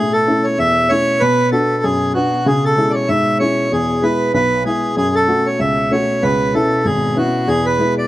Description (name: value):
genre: celtic folk, Celtic reel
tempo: 192 BPM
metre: 4/4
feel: swing 56% on 8ths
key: unclear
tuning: A4 = 440 Hz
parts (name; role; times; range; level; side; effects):
- accordion; melody; 0.0-8.1 s; F#4 to E5; -16 LUFS; right 1 dB; slapback echo
- concert harp; second line; 0.0-0.8 s; none; barely audible; none; none
- dark upright piano; accompaniment; 0.0-8.0 s; G#1 to F#4; -18 LUFS; left 1 dB; slapback echo
- dark cello; drone; 0.0-8.1 s; B2; -26 LUFS; left 1 dB; none
room: little or no reverb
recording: recorded outdoors, with no room sound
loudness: -13 LUFS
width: side -16 dB against mid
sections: 0.0-8.1 A section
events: none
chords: 0.0 A; 1.2 Bm; 2.5 C#m; 3.7 E; 5.0 F#m; 6.2 C#m7; 7.5 E